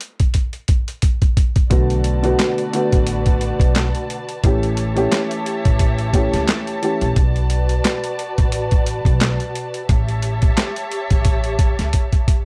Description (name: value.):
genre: hip hop, boom-bap hip-hop.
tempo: 88 BPM.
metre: 4/4.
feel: swing 56% on 16ths.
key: B minor.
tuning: A4 = 444 Hz.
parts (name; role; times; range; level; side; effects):
boom bap sampler-style drum kit; drums; 0.0-12.4 s; handclaps, hi-hat, kick drum, snare drum; -19 LUFS; equal; none.
dark upright piano; accompaniment; 1.7-7.2 s; D3 to G4; -23 LUFS; equal; cassette tape, high-pass filter, low-pass filter.
dark studio string section; sustained chords; 1.7-12.4 s; F#4 to A5; -28 LUFS; equal; high-pass filter, low-pass filter.
upright bass; bass; 1.7-11.9 s; A1 to C#2; -24 LUFS; equal; none.
room: small room ambience.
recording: dry, gritty hardware recording, cassette tape.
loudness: -18 LUFS.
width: mono.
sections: 0.0-12.4 A section.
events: break 0.0-1.7; drum fill 0.3-1.7, 11.9-12.4.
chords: 0.0 N.C.; 1.7 Bm7; 4.4 A7; 7.2 Bm7; 9.9 A7.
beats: 0.35 1.03 | 1.71 2.39 3.08 3.76 | 4.44 5.12 5.80 6.48 | 7.17 7.85 8.53 9.21 | 9.89 10.57 11.26 11.94.